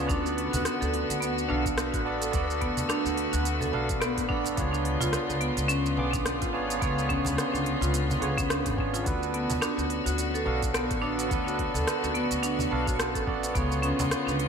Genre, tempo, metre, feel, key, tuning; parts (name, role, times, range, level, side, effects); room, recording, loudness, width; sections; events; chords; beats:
organic downtempo; 107 BPM; 4/4; swing 57% on 16ths; A4 = 440 Hz
barky tine electric piano; accompaniment; 0.0-14.5 s; D3 to D6; -32 LUFS; right 3 dB; medium stereo tremolo, sidechain pumping, ping-pong delay
rich chamber string section; sustained chords; 0.0-14.5 s; D3 to F#4; -34 LUFS; left 2 dB; sidechain pumping
marimba with hard mallets; arpeggios; 0.0-14.4 s; B3 to A4; -31 LUFS; equal; vintage 12-bit sampler grit, ping-pong delay
upright bass; bass; 0.0-14.5 s; G#1 to D2; -32 LUFS; equal; sidechain pumping
twinkling granular texture; texture; 0.0-14.5 s; B3 to C#6; -39 LUFS; left 2 dB; built-in reverb, wide subtle chorus
electronic kick drum; drums; 0.1-13.7 s; -32 LUFS; equal; overdrive
organic electronic drum kit; drums; 0.1-14.5 s; hi-hat, rim click, shaker; -34 LUFS; right 1 dB; overdrive, gated reverb
cajon; percussion; 0.5-14.5 s; -36 LUFS; right 1 dB
light reverb, small room ambience; bright 1980s-style digital production; -25 LUFS; side -6 dB against mid
0.0-14.5 A section
0.1 D6; 4.6 C#7b9; 9.1 D6; 13.5 C#7b9
| 0.09 0.65 1.21 1.77 | 2.33 2.90 3.46 4.02 | 4.58 5.14 5.70 6.26 | 6.82 7.38 7.94 8.50 | 9.06 9.62 10.19 10.75 | 11.31 11.87 12.43 12.99 | 13.55 14.11